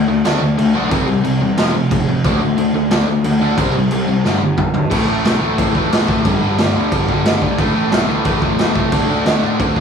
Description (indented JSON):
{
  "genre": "punk rock",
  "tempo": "180 BPM",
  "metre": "4/4",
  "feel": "straight",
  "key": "A minor",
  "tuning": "A4 = 440 Hz",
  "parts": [
    { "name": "crunchy overdriven guitar", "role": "riff", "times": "0.0-9.8 s", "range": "F2 to D4", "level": "-16 LUFS", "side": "left 1 dB", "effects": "none" },
    { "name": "fuzz picked electric bass", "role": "bass", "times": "0.0-9.8 s", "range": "E1 to A2", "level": "-21 LUFS", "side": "equal", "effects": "overdrive" },
    { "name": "raw garage drum kit", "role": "drums", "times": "0.2-9.8 s", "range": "crash cymbal, kick drum, snare drum, toms", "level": "-19 LUFS", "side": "equal", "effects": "none" }
  ],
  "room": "moderate small room reverb, RT60 0.5 s",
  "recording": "studio reverb",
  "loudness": "-13 LUFS",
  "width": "side -6 dB against mid",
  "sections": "0.0-4.9 A section; 4.9-9.8 B section",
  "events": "half time 0.0-4.9; drum fill 4.2-4.9",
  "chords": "0.0 D5; 0.9 C; 1.6 F5; 2.2 D5; 3.6 C5; 4.2 G5; 4.9 A5; 6.3 G5; 7.6 Am; 8.9 D5",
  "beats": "0.25 0.58 | 0.91 1.25 1.58 1.91 | 2.25 2.58 2.92 3.25 | 3.58 3.92 4.25 4.58 | 4.92 5.25 5.58 5.92 | 6.25 6.59 6.92 7.26 | 7.59 7.92 8.26 8.59 | 8.93 9.26 9.60"
}